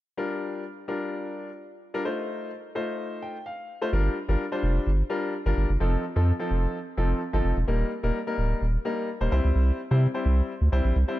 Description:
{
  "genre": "pop",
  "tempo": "128 BPM",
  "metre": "4/4",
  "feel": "straight",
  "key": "G minor",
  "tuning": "A4 = 440 Hz",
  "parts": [
    { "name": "clear baby grand piano", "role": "accompaniment", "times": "0.2-11.2 s", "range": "F3 to G5", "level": "-29 LUFS", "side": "left 2 dB", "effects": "none" },
    { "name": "saturated sub bass", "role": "bass", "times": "3.9-11.0 s", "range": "D1 to C3", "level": "-22 LUFS", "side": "equal", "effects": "none" }
  ],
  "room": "light reverb, small room ambience",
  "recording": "dark, warm production",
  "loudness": "-24 LUFS",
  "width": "side -16 dB against mid",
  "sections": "0.2-3.9 A section; 3.9-11.2 B section",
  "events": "grand piano fill 3.0-3.9",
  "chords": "0.2 Gm7; 2.1 F7; 3.9 Gm7; 5.8 F7; 7.7 Eb; 9.3 C"
}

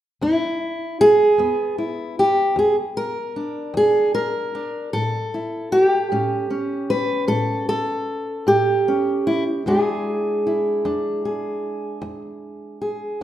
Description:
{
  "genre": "acoustic country blues, solo or duo",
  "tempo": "51 BPM (dotted quarters)",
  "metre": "12/8",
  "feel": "straight",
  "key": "E mixolydian",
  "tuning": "A4 = 443 Hz",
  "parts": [
    { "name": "fingerpicked steel-string acoustic guitar", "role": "solo", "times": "0.2-13.2 s", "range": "E2 to B4", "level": "-19 LUFS", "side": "equal", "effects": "none" }
  ],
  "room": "wet recital hall reverb, RT60 1.3 s",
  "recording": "recorded in a church or concert hall",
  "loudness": "-18 LUFS",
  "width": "side -12 dB against mid",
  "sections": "0.2-13.2 A section",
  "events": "none",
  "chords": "0.2 E7; 4.9 A7; 9.7 E7"
}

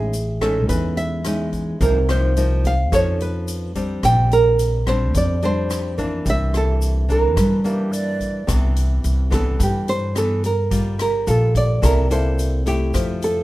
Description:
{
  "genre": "bossa nova",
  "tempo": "108 BPM",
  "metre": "4/4",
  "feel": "straight",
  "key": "C major from 8.5 s",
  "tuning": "A4 = 440 Hz",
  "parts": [
    { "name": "nylon-string guitar", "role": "melody", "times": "0.0-13.4 s", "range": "G4 to G5", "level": "-21 LUFS", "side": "right 2 dB", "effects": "none" },
    { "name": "nylon-string guitar", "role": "accompaniment", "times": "0.0-13.4 s", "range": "G2 to A4", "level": "-25 LUFS", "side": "left 2 dB", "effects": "none" },
    { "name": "upright bass", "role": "bass", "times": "0.0-13.4 s", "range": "G1 to G2", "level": "-20 LUFS", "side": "equal", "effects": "none" },
    { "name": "swinging big-band drum kit", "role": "drums", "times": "0.1-13.4 s", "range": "hi-hat, kick drum, rim click", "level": "-27 LUFS", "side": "equal", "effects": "none" },
    { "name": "tube shaker", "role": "percussion", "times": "0.1-13.4 s", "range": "none", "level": "-38 LUFS", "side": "left 3 dB", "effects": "none" },
    { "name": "breathy hollow jazz flute", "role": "second line", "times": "7.6-8.5 s", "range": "G4 to D5", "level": "-28 LUFS", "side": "right 4 dB", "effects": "none" }
  ],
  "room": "little or no reverb",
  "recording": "rough home demo mix",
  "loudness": "-17 LUFS",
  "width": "side -17 dB against mid",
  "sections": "0.0-8.5 A section; 8.5-13.4 B section",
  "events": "nylon-string guitar solo 8.5-13.4",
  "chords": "0.0 Amaj7#11; 1.8 Cm7; 2.9 F7b13; 4.0 Bb69; 6.3 C9; 8.5 Cmaj9; 10.7 Gm9; 11.8 C6"
}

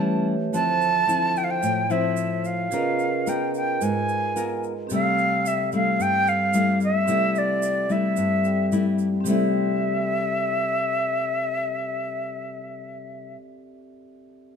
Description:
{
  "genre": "bossa nova",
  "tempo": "110 BPM",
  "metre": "4/4",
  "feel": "straight",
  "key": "C major",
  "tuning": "A4 = 440 Hz",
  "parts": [
    { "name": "jazz flute", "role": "melody", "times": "0.0-13.4 s", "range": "D5 to A5", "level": "-24 LUFS", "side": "right 1 dB", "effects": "none" },
    { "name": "nylon-string guitar", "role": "accompaniment", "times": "0.0-13.4 s", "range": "G2 to Bb4", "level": "-25 LUFS", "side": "left 3 dB", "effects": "none" },
    { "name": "vibraphone with medium hard mallets", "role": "accompaniment", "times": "0.0-14.6 s", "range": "A3 to E6", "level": "-30 LUFS", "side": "right 3 dB", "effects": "none" },
    { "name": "tube shaker", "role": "percussion", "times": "0.5-9.4 s", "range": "none", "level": "-39 LUFS", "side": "right 8 dB", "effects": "none" }
  ],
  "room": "moderate echo chamber reverb, RT60 1.4 s",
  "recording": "minimal, uncompressed stereo recording",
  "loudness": "-21 LUFS",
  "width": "side -7 dB against mid",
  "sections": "0.0-9.3 A section; 9.3-13.6 B section",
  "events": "none",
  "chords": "0.0 A7; 0.5 Dm9; 2.7 Db13; 4.9 C6"
}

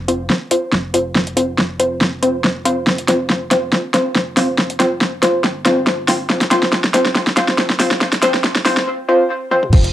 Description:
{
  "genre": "deep dubstep",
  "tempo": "140 BPM",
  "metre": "4/4",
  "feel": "swing 54% on 16ths, half-time",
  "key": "unclear",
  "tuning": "A4 = 440 Hz",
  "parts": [
    { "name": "soft dub sub bass", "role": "bass", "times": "0.0-9.9 s", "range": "F1 to G1", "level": "-30 LUFS", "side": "equal", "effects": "none" },
    { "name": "filtered dub chord stab", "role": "stabs", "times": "0.1-9.6 s", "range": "C4 to C5", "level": "-17 LUFS", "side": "left 1 dB", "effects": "chorus, cassette tape, dub echo" },
    { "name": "deep house drum kit", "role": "drums", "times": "0.1-9.9 s", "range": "crash cymbal, hi-hat, snare drum, toms", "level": "-16 LUFS", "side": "equal", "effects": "none" },
    { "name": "electronic kick drum", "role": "drums", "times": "9.7-9.8 s", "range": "none", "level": "-10 LUFS", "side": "equal", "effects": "none" }
  ],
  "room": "wet small room reverb, RT60 0.6 s",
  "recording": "home recording on cassette, high-pass filter",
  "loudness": "-14 LUFS",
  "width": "side -12 dB against mid",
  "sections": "0.0-9.7 A section",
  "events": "build-up 0.0-9.7; drum fill 0.0-8.9, 9.5; filter sweep on synth stab 0.0-9.7",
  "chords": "0.0 F5"
}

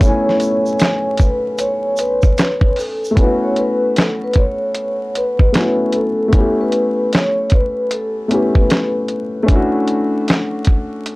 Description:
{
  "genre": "lo-fi hip hop",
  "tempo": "76 BPM",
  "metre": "4/4",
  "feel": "swing 64% on 16ths",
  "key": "A major",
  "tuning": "A4 = 440 Hz",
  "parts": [
    { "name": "vibraphone with soft mallets", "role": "melody", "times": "0.0-9.1 s", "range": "A4 to C#5", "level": "-19 LUFS", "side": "equal", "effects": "low-pass filter, analog delay" },
    { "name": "dark upright piano", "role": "accompaniment", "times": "0.0-11.2 s", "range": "A3 to G#5", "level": "-19 LUFS", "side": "left 1 dB", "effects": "cassette tape, low-pass filter" },
    { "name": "dusty soul sampler-style drum kit", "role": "drums", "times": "0.0-11.2 s", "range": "handclaps, hi-hat, kick drum, snare drum", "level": "-14 LUFS", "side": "equal", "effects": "none" },
    { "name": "egg shaker", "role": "percussion", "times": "0.0-3.2 s", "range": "none", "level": "-36 LUFS", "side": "right 3 dB", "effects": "none" }
  ],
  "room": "little or no reverb",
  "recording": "dry, gritty hardware recording, transformer saturation, vinyl crackle",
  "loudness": "-14 LUFS",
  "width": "side -22 dB against mid",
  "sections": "0.0-3.2 A section; 3.2-11.2 B section",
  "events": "none",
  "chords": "0.0 A69; 6.3 A7; 9.5 Dmaj7"
}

